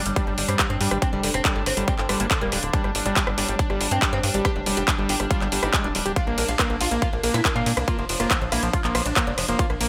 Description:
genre	psychedelic trance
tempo	140 BPM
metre	4/4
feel	straight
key	G minor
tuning	A4 = 441 Hz
part	pulsing gated texture	sustained chords	0.0-9.9 s	D4	-35 LUFS	equal	chorus, built-in reverb, sidechain pumping
part	impact	sound effects	0.0-1.0 s	none	barely audible	none	none
part	oud	melody	0.1-9.9 s	D3 to G4	-30 LUFS	equal	phaser, sidechain pumping, dub echo
part	tight sequencer bass	bass	0.1-9.9 s	D1 to Bb2	-31 LUFS	equal	none
part	big-room dance drum kit	drums	0.1-9.9 s	handclaps, hi-hat, ride cymbal, rim click	-28 LUFS	equal	overdrive
part	overdriven acid bass	riff	0.2-9.9 s	G3 to G4	-32 LUFS	equal	cassette tape, sidechain pumping, dub echo
part	electronic kick drum	drums	0.2-9.7 s	none	-27 LUFS	equal	overdrive
room	light reverb, digital ambience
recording	none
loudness	-23 LUFS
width	mono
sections	0.0-9.9 A section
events	impact 0.0-1.0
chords	0.0 G5; 6.2 Bb5

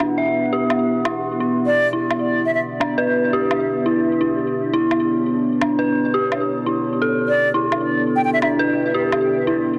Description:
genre	half-time drum and bass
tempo	171 BPM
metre	4/4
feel	half-time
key	E dorian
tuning	A4 = 440 Hz
part	deep dark ambient pad	sustained chords	0.0-9.8 s	B3 to F#5	-26 LUFS	equal	chorus, built-in reverb
part	dark detuned synth bell	arpeggios	0.0-9.8 s	D4 to E5	-22 LUFS	equal	chorus, phaser, low-pass filter, digital delay
part	woodblock	drums	0.0-9.2 s	none	-25 LUFS	equal	none
part	mellow silver concert flute	melody	1.7-2.6, 7.3-8.5 s	D5 to G5	-25 LUFS	equal	dub echo
room	moderate huge ambient reverb, RT60 7.7 s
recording	dense, heavily limited modern master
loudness	-19 LUFS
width	mono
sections	0.0-9.8 A section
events	filter sweep on synth bell 0.0-9.8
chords	0.0 E5

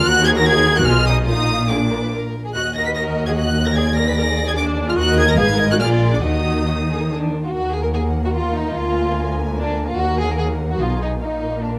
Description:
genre	quick classical-period movement for string orchestra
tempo	146 BPM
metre	3/4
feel	rubato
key	Eb minor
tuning	A4 = 440 Hz
part	warm chamber violin section	melody	0.0-11.7 s	F5 to Cb7	-24 LUFS	equal	none
part	rich chamber violin section	second line	0.0-11.8 s	D4 to F5	-26 LUFS	equal	none
part	rich chamber viola section	accompaniment	0.0-11.8 s	Bb3 to Cb5	-27 LUFS	equal	none
part	rich studio double bass section	bass	0.0-11.8 s	Ab1 to Eb2	-24 LUFS	equal	none
part	warm chamber cello section	bass	0.0-11.8 s	D2 to Eb3	-26 LUFS	equal	none
room	moderate recital hall reverb, RT60 1.6 s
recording	close, detailed microphones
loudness	-19 LUFS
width	mono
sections	0.0-7.5 A section; 7.5-11.8 B section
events	none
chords	0.1 Ebm; 0.9 Abm/Cb; 1.3 Bb; 2.5 Ebm; 3.8 Ebsus4; 5.0 Ebm; 5.4 Fdim/Ab; 5.8 Bb7; 6.2 Ebm; 8.8 Bb7/D; 10.0 Ebm; 10.8 Abm/Cb; 11.2 Bb

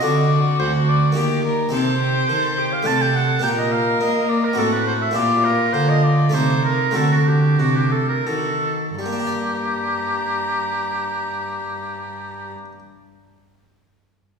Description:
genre	classical, baroque-style sonata movement with continuo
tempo	82-107 BPM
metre	3/4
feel	rubato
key	G minor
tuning	A4 = 440 Hz
part	warm violin	melody	0.0-12.5 s	D4 to Bb5	-26 LUFS	left 3 dB	none
part	clear oboe	second line	0.0-12.5 s	F#4 to A5	-22 LUFS	right 1 dB	none
part	harpsichord	accompaniment	0.0-12.8 s	D2 to D5	-25 LUFS	left 1 dB	none
part	rich cello	bass	0.0-12.5 s	D2 to Bb3	-21 LUFS	right 1 dB	none
room	wet scoring stage reverb, RT60 1.8 s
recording	recorded in a church or concert hall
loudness	-17 LUFS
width	side -6 dB against mid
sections	0.0-9.0 A section; 9.0-13.3 B section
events	slowing down 4.3-9.0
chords	0.0 D7; 1.2 Eb; 1.7 Cm; 2.9 D7/C; 3.4 Gm/Bb; 4.6 F#dim/A; 5.2 Gm/Bb; 6.3 Adim/C; 7.0 D7; 9.0 Gm

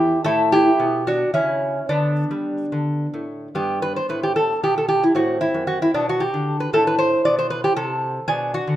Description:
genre	classical, baroque-style dance for lute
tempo	71-78 BPM (dotted quarters)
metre	6/8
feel	rubato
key	G major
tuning	A4 = 442 Hz
part	lute	solo	0.0-8.8 s	E2 to D5	-18 LUFS	equal	none
room	moderate recital hall reverb, RT60 1.4 s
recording	dark, warm production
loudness	-18 LUFS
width	side -13 dB against mid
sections	0.0-3.6 A section; 3.6-8.8 A section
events	none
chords	0.2 A7; 1.9 G/D; 2.7 D5; 3.6 G; 5.2 F#dim/A; 6.0 G/B; 6.7 Am

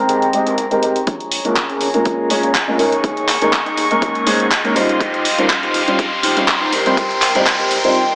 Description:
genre	filtered disco house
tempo	122 BPM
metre	4/4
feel	swing 54% on 16ths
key	Ab major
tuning	A4 = 440 Hz
part	warm grand piano	accompaniment	0.0-7.9 s	G3 to G5	-18 LUFS	equal	phaser, vintage 12-bit sampler grit, sidechain pumping, low-pass filter
part	warm chamber string section	sustained chords	0.0-8.2 s	Ab3 to Db6	-20 LUFS	left 1 dB	sidechain pumping, low-pass filter
part	electric guitar at the edge of break-up	riff	0.1-7.8 s	C4 to Eb5	-21 LUFS	equal	sidechain pumping, low-pass filter
part	house drum kit	drums	0.1-7.9 s	handclaps, hi-hat	-19 LUFS	equal	sidechain pumping on hats, high-pass filter on hats, high-pass filter on snare, high-pass filter on room
part	fingered electric bass	bass	1.1-7.8 s	Ab1 to Db3	-32 LUFS	equal	none
part	electronic kick drum	drums	1.1-7.6 s	none	-22 LUFS	equal	high-pass filter on kick, high-pass filter on room
part	riser	sound effects	3.1-8.0 s	none	-24 LUFS	equal	none
room	moderate lush hall reverb, RT60 2.2 s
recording	small speaker sound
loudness	-13 LUFS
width	side -25 dB against mid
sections	0.0-1.1 A section; 1.1-8.2 B section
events	filter sweep 0.0-1.1, 1.1-8.2; build-up 1.1-8.2; riser 3.1-8.0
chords	0.0 Abmaj9; 1.1 Bbm7; 2.8 Eb7sus4; 4.8 Dbmaj9#11; 6.7 Abmaj9

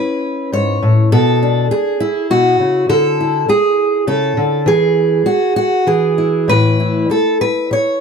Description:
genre	folk, solo fingerstyle acoustic guitar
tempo	100 BPM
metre	3/4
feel	rubato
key	A major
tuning	A4 = 438 Hz
part	fingerpicked steel-string acoustic guitar	solo	0.0-8.0 s	G#2 to C#5	-12 LUFS	equal	none
room	light reverb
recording	close, detailed microphones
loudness	-12 LUFS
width	side -6 dB against mid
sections	0.0-8.0 A section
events	none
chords	0.0 Aadd9; 1.1 Bm7; 2.9 Dsus2; 4.7 E5; 5.9 N.C.; 6.5 A

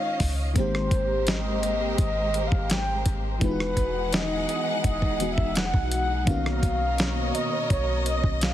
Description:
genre	contemporary R&B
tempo	84 BPM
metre	4/4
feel	straight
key	unclear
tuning	A4 = 441 Hz
part	mellow horn-like synth lead	melody	0.0-8.5 s	B4 to G5	-29 LUFS	equal	chorus, ping-pong delay
part	FM electric piano with soft pad layer	accompaniment	0.0-8.5 s	Eb3 to G4	-31 LUFS	left 2 dB	chorus, tremolo
part	warm studio string section	sustained chords	0.0-8.5 s	B2 to F#5	-32 LUFS	equal	sidechain pumping
part	clean 808-style bass	bass	0.2-8.5 s	E1 to Db2	-28 LUFS	equal	none
part	dusty soul sampler-style drum kit	drums	0.2-8.5 s	hi-hat, kick drum, rim click, snare drum	-26 LUFS	equal	none
room	digital ambience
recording	heavily compressed radio sound, multiband compression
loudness	-22 LUFS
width	side -12 dB against mid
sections	0.6-8.5 A section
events	none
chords	0.0 Dbadd9; 0.6 Abmaj9; 3.4 Emaj9; 6.3 Bmaj9

